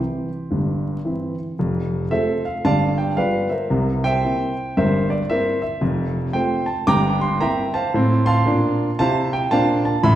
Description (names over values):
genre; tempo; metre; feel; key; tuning
jazz, stride piano; 113 BPM; 4/4; swing 64% on 8ths; F major; A4 = 441 Hz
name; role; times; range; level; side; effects
dark grand piano; solo; 0.0-10.2 s; F1 to D6; -18 LUFS; equal; none
room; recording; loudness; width
wet recital hall reverb, RT60 1.6 s; recorded in a church or concert hall, vinyl crackle; -18 LUFS; side -12 dB against mid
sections
0.0-1.6 A section; 1.6-10.2 B section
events
none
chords
0.0 C; 1.6 F; 2.6 G7; 3.7 C7; 5.8 F; 6.9 C7/G; 7.9 F/A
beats
0.52 1.05 | 1.57 2.10 2.63 3.16 | 3.69 4.22 4.75 5.28 | 5.81 6.34 6.87 7.40 | 7.93 8.46 8.99 9.52 | 10.05